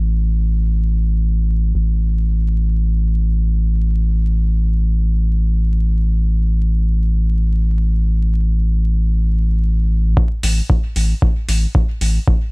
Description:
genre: dub techno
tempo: free time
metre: none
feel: none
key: unclear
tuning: A4 = 435 Hz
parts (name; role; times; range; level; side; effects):
- round analog bass; bass; 0.0-12.2 s; A1; -15 LUFS; equal; sidechain pumping
- electronic kick drum; drums; 10.2-12.4 s; none; -15 LUFS; equal; none
- electronic hi-hat; drums; 10.4-12.1 s; none; -25 LUFS; equal; low-pass filter on hats, low-pass filter on room
room: little or no reverb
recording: echo-heavy mix, vinyl crackle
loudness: -15 LUFS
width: side -31 dB against mid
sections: 0.0-10.2 A section; 10.2-12.5 B section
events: none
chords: none

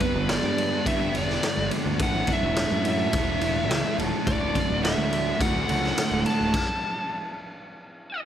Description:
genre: quiet-loud alternative rock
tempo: 106 BPM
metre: 4/4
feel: straight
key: D major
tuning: A4 = 440 Hz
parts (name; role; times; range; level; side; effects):
- smooth overdriven lead guitar; melody; 0.0-8.2 s; B4 to A5; -28 LUFS; equal; tape echo
- picked steel-string acoustic guitar; arpeggios; 0.0-6.5 s; D2 to A4; -34 LUFS; right 6 dB; none
- fuzz guitar; riff; 0.0-6.5 s; D2 to A4; -28 LUFS; equal; distortion
- raw garage drum kit; drums; 0.0-6.7 s; crash cymbal, kick drum, ride cymbal, snare drum; -28 LUFS; equal; none
- fuzz picked electric bass; bass; 0.1-6.5 s; D1 to G2; -30 LUFS; equal; overdrive
room: light reverb, small room ambience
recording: none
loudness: -22 LUFS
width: side -10 dB against mid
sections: 0.0-8.3 A section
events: stop 6.5-8.3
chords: 0.0 G; 2.0 Asus4; 4.3 D; 6.5 N.C.

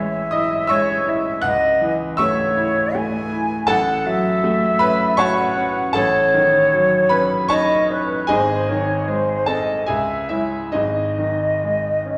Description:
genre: classical, romantic duo for flute and grand piano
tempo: 67-82 BPM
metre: 3/4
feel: rubato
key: unclear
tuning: A4 = 439 Hz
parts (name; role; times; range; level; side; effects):
- mellow silver concert flute; melody; 0.0-12.2 s; B4 to G#5; -22 LUFS; equal; none
- bright grand piano; accompaniment; 0.0-12.2 s; G#1 to F#6; -22 LUFS; equal; none
room: wet recital hall reverb, RT60 1.4 s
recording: heard from further back in the room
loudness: -19 LUFS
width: mono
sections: 0.0-12.2 A section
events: none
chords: 0.0 Amaj7; 1.4 A/C#; 3.7 F#m/A; 6.0 D#m7b5/A; 8.3 G#; 9.9 C#m; 10.7 G#5

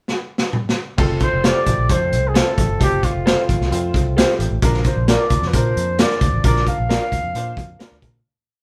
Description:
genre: uptempo 1960s-style soul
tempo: 132 BPM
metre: 4/4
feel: straight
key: F major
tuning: A4 = 440 Hz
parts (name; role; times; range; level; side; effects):
- crunchy breakbeat drum kit; drums; 0.1-8.1 s; crash cymbal, hi-hat, kick drum, snare drum, toms; -21 LUFS; equal; none
- bright upright piano; accompaniment; 1.0-8.1 s; C4 to C5; -29 LUFS; equal; none
- tonewheel organ; sustained chords; 1.0-8.2 s; F3 to D4; -35 LUFS; equal; none
- vintage muted fingered electric bass; bass; 1.0-8.2 s; F1 to Bb2; -24 LUFS; equal; none
- mellow trumpet; melody; 1.2-8.0 s; F4 to F5; -25 LUFS; equal; none
- electric guitar through a small old amp; stabs; 1.4-7.9 s; A4 to F5; -24 LUFS; equal; none
room: moderate studio reverb, RT60 0.7 s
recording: band playing live in one room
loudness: -18 LUFS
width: mono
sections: 0.0-1.0 pickup bar; 1.0-8.2 verse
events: drum fill 0.1-1.0; fade-out 6.4-8.2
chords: 0.0 N.C.; 1.0 F; 4.6 Bb

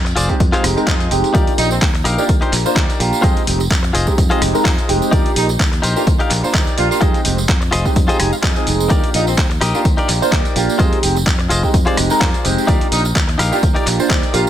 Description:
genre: filtered disco house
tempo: 127 BPM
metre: 4/4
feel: swing 55% on 16ths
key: Eb major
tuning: A4 = 442 Hz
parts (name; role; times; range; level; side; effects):
- direct-recorded clean electric guitar; riff; 0.0-14.3 s; Eb4 to Ab5; -22 LUFS; left 3 dB; sidechain pumping
- fingered electric bass; bass; 0.0-14.4 s; F1 to F2; -20 LUFS; equal; sidechain pumping
- dusty soul sampler-style drum kit; drums; 0.1-14.5 s; handclaps, hi-hat, rim click, tambourine; -21 LUFS; equal; sidechain pumping on perc, small room ambience, sidechain pumping on hats
- warm concert grand piano; accompaniment; 0.3-14.5 s; Ab3 to C5; -19 LUFS; right 2 dB; phaser, sidechain pumping
- electronic kick drum; drums; 0.3-14.2 s; none; -17 LUFS; equal; overdrive, small room ambience
- tambourine; percussion; 1.3-14.5 s; none; -32 LUFS; right 7 dB; sidechain pumping on perc
- warm horn section; melody; 1.6-1.9, 5.4-9.5, 12.9-14.5 s; C4 to F4; -23 LUFS; right 2 dB; sidechain pumping, ping-pong delay
room: light reverb, small room reverb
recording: none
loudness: -13 LUFS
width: side -11 dB against mid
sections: 0.0-14.5 A section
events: clean electric guitar fill 8.0-8.9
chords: 0.0 Fm7; 1.3 Ebmaj7; 3.2 Fm7; 5.1 Ebmaj7; 7.0 Fm7; 8.9 Ebmaj7; 10.8 Fm7; 12.7 Ebmaj7

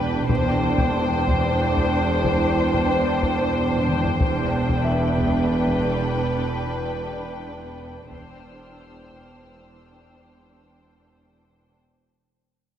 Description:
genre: cinematic, suspense film score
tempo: 92 BPM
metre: 3/4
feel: straight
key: unclear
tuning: A4 = 440 Hz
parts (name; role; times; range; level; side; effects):
- muted symphonic violin section; melody; 0.0-11.8 s; G5; -30 LUFS; left 4 dB; none
- muted symphonic violin section; second line; 0.0-11.8 s; B4 to C5; -27 LUFS; equal; none
- muted symphonic viola section; accompaniment; 0.0-11.8 s; D4; -29 LUFS; equal; none
- muted symphonic cello section; bass; 0.0-11.8 s; E2; -26 LUFS; right 1 dB; none
- muted symphonic double bass section; bass; 0.0-11.8 s; E1; -28 LUFS; right 2 dB; none
- warm concert grand piano; texture; 0.0-0.3, 4.8-12.1 s; D4 to B5; -36 LUFS; left 2 dB; none
- taiko ensemble; drums; 0.3-9.4 s; none; -28 LUFS; left 1 dB; none
- muted symphonic violin section; texture; 8.1-11.7 s; E6 to F6; -61 LUFS; left 2 dB; none
room: wet concert hall reverb, RT60 2.1 s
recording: none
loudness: -19 LUFS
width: side -10 dB against mid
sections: 0.0-12.0 A section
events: fade-out 0.0-12.0; drum fill 3.7-4.2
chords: 0.3 Cadd9/E

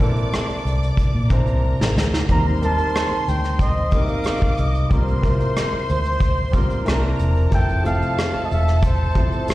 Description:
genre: lush 1970s-style soul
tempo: 92 BPM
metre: 4/4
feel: straight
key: F major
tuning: A4 = 439 Hz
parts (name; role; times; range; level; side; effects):
- warm studio violin section; second line; 0.0-9.5 s; A4 to D6; -29 LUFS; equal; plate reverb, slapback echo
- warm grand piano; accompaniment; 0.0-9.5 s; E3 to C5; -26 LUFS; left 1 dB; plate reverb, slapback echo
- vintage muted fingered electric bass; bass; 0.0-9.5 s; E1 to Bb2; -20 LUFS; equal; none
- vintage brush drum kit; drums; 0.0-9.5 s; hi-hat, kick drum, rim click, snare drum; -21 LUFS; equal; none
- breathy flugelhorn; melody; 2.3-9.5 s; A4 to Bb5; -26 LUFS; right 1 dB; plate reverb, slapback echo
room: little or no reverb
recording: live gig heard through the venue's PA, recital hall reverb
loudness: -17 LUFS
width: side -17 dB against mid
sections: 0.0-9.5 A section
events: drum fill 1.6-2.3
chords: 0.0 Bbmaj9#11; 2.3 Eb6; 4.9 C7sus4; 6.9 C9; 7.5 Fmaj7

